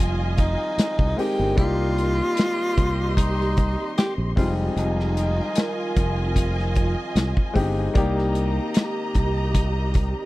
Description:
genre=lush 1970s-style soul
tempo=75 BPM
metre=4/4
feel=swing 54% on 16ths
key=F dorian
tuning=A4 = 441 Hz
part: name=warm studio string section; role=second line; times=0.0-10.3 s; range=F4 to C6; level=-31 LUFS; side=equal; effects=none
part: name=warm grand piano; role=accompaniment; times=0.0-10.3 s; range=G3 to D5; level=-29 LUFS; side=left 3 dB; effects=none
part: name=dark French horn section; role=sustained chords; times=0.0-10.3 s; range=Eb3 to G4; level=-35 LUFS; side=right 2 dB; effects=none
part: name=fingered electric bass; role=bass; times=0.0-10.1 s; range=F1 to C2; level=-24 LUFS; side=equal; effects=none
part: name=breathy tenor saxophone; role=melody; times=0.4-5.9 s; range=Eb4 to G4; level=-26 LUFS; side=equal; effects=none
part: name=modern studio drum kit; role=drums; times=0.4-10.2 s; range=hi-hat, kick drum, snare drum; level=-21 LUFS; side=equal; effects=none
part: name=vibraphone with soft mallets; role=texture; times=1.2-6.9 s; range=Bb4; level=-33 LUFS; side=right 5 dB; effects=none
room=little or no reverb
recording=dry, close 1970s-style studio recording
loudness=-20 LUFS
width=side -18 dB against mid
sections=0.0-10.3 A section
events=none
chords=0.0 Fm7; 1.6 Cm7; 4.4 Fm7; 8.0 Cm7

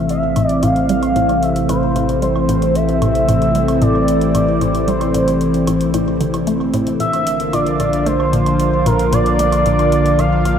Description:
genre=ambient, sequencer-driven space music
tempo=113 BPM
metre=4/4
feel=straight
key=A phrygian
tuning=A4 = 440 Hz
part: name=pulse-width lead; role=melody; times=0.0-10.6 s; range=Bb4 to F5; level=-18 LUFS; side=equal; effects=chorus, ping-pong delay
part: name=lush unison pad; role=sustained chords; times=0.0-10.6 s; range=C3 to F4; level=-16 LUFS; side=equal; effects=chorus
part: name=hollow square pluck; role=riff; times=0.0-10.6 s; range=A2 to A3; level=-22 LUFS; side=left 1 dB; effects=chorus, phaser, ping-pong delay
part: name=warm sub bass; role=bass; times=0.0-10.6 s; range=A1 to Bb1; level=-23 LUFS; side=equal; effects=none
part: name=electronic hi-hat and woodblock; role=percussion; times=0.1-10.6 s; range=none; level=-31 LUFS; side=right 3 dB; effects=ping-pong delay
room=wet lush hall reverb, RT60 2.8 s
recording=dreamy mix soaked in reverb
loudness=-13 LUFS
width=side -8 dB against mid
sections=0.0-10.6 A section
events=filter sweep on synth arpeggio sound 0.0-10.6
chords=0.0 Am; 7.0 Bb

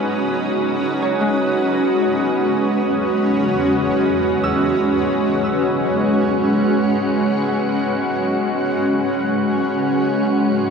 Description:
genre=ambient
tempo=free time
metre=none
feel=none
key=unclear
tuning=A4 = 443 Hz
part: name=granular cloud pad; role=sustained chords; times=0.0-10.7 s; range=E2 to B4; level=-17 LUFS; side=equal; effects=built-in reverb
part: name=wind-like tuned noise texture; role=texture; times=0.0-10.7 s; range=D#4 to F#6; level=-28 LUFS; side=left 1 dB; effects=built-in reverb
part: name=Celtic harp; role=arpeggios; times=1.0-5.7 s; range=G#3 to E6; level=-28 LUFS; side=right 1 dB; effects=tape echo
room=wet huge ambient reverb, RT60 8.0 s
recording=in a vast, echoing space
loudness=-16 LUFS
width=side -5 dB against mid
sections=0.0-5.5 A section; 5.5-10.7 B section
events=none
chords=0.0 B69; 2.5 Emaj9; 5.5 G#m7

